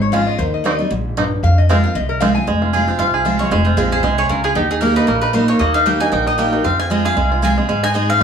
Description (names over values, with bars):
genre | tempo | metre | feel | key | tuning
bluegrass | 230 BPM | 4/4 | swing 56% on 8ths | F minor | A4 = 435 Hz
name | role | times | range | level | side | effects
lap resonator guitar | second line | 0.0-2.5 s | Bb4 to Ab5 | -21 LUFS | left 3 dB | none
picked steel-string acoustic guitar | accompaniment | 0.0-8.2 s | F2 to Ab4 | -20 LUFS | equal | none
upright bass | bass | 0.0-8.2 s | F1 to Ab2 | -19 LUFS | equal | none
bluegrass banjo | arpeggios | 0.1-8.2 s | Ab3 to Ab4 | -19 LUFS | right 4 dB | none
mandolin | melody | 3.0-8.2 s | F4 to Ab5 | -19 LUFS | left 2 dB | slapback echo, plate reverb
room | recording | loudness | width
moderate studio reverb, RT60 0.6 s | small room ambience | -14 LUFS | side -7 dB against mid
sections
0.0-2.5 A section; 2.5-8.2 B section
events
resonator guitar played with a steel bar solo 0.0-2.5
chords
0.4 Eb6; 1.4 Fm; 4.6 Eb; 6.6 Fm; 7.7 Ab